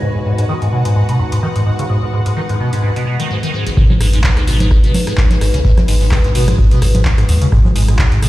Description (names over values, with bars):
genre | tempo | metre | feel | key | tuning
acid house | 128 BPM | 4/4 | swing 55% on 16ths | G# minor pentatonic | A4 = 439 Hz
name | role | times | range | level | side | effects
dark analog pad | sustained chords | 0.0-8.3 s | G#3 to B4 | -25 LUFS | left 1 dB | chorus, phaser, sidechain pumping
liquid acid bass | riff | 0.0-8.3 s | G#1 to D#3 | -16 LUFS | equal | phaser, overdrive, lush chorus, digital delay
bright symphonic string section | texture | 0.0-3.8 s | F#4 to G#5 | -27 LUFS | left 1 dB | sidechain pumping
electro analog drum machine | drums | 0.4-8.3 s | congas, handclaps, hi-hat, rim click | -21 LUFS | equal | none
warm sub bass | bass | 3.8-8.3 s | G#1 to D#2 | -15 LUFS | equal | sidechain pumping
electronic kick drum | drums | 3.8-8.1 s | none | -13 LUFS | equal | none
sub drop | sound effects | 3.8-5.6 s | none | -22 LUFS | equal | none
room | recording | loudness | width
light reverb | played on a big sound system in a bare room, stone room reverb | -11 LUFS | side -16 dB against mid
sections
0.0-3.8 A section; 3.8-8.3 B section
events
filter sweep on acid bass 0.0-3.8; drop 3.8-8.3; impact 3.8-5.6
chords
0.0 G#m7